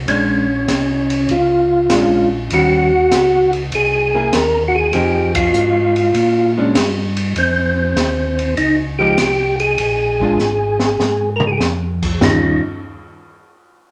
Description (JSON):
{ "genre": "soul jazz organ trio", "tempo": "99 BPM", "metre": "4/4", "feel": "swing 69% on 8ths", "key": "Eb mixolydian", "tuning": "A4 = 439 Hz", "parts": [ { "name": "mellow tonewheel organ", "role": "bass", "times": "0.0-12.6 s", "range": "Ab1 to Bb2", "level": "-24 LUFS", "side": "equal", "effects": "chorus vibrato, slow rotary speaker" }, { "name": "percussive tonewheel organ", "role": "melody", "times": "0.1-12.6 s", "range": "C4 to Bb4", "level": "-18 LUFS", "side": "equal", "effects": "overdrive, chorus vibrato, fast rotary speaker" }, { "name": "archtop guitar, miked and amplified", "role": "accompaniment", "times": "0.1-12.6 s", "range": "Eb3 to G#4", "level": "-22 LUFS", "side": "equal", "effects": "none" }, { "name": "open jazz drum kit", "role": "drums", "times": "0.1-12.4 s", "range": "crash cymbal, hi-hat, kick drum, ride cymbal, snare drum, toms", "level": "-24 LUFS", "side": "equal", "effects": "none" } ], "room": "wet large studio reverb, RT60 1.3 s", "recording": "none", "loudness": "-16 LUFS", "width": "mono", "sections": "0.0-7.4 A section; 7.4-12.2 B section; 12.2-13.9 C section", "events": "band accent 5.2-5.5; drum fill 10.4-11.6", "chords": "0.1 Bb7#9; 2.5 Eb7#9; 3.7 C7alt; 4.9 Fm7; 6.1 Bb7#9; 7.4 F7sus2; 9.8 Bb7(no3); 12.2 Eb9", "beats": "| 0.08 0.69 1.30 1.90 | 2.51 3.12 3.72 4.33 | 4.94 5.54 6.15 6.75 | 7.36 7.97 8.57 9.18 | 9.79 10.39 11.00 11.61 | 12.21" }